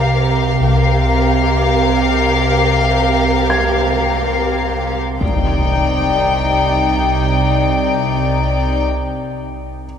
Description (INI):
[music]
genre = cinematic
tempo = 52 BPM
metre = 4/4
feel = straight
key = C minor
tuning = A4 = 439 Hz
[part]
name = warm studio violin section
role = melody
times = 0.0-8.8 s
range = F5 to G5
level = -19 LUFS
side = left 4 dB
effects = none
[part]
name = warm symphonic violin section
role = second line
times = 0.0-8.8 s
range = Eb4 to D5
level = -19 LUFS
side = left 3 dB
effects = none
[part]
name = warm symphonic cello section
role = bass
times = 0.0-8.8 s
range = C3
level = -19 LUFS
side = right 3 dB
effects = none
[part]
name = saturated sub bass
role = drone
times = 0.0-8.8 s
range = C2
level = -21 LUFS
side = right 1 dB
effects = none
[part]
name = clear symphonic double bass section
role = bass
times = 0.6-8.8 s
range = C2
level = -23 LUFS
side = right 2 dB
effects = none
[part]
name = dark concert grand piano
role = texture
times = 3.5-5.2 s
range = Ab6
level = -25 LUFS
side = equal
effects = none
[part]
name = impact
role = sound effects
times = 5.2-8.8 s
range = none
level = -26 LUFS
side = equal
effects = none
[sound]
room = wet cathedral reverb, RT60 4.6 s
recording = recorded in a church or concert hall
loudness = -13 LUFS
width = side -8 dB against mid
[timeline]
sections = 0.0-5.2 A section; 5.2-9.8 B section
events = impact 5.2-9.8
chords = 0.0 Gm7/C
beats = | 0.60 1.76 2.91 4.07 | 5.22 6.37 7.53 8.68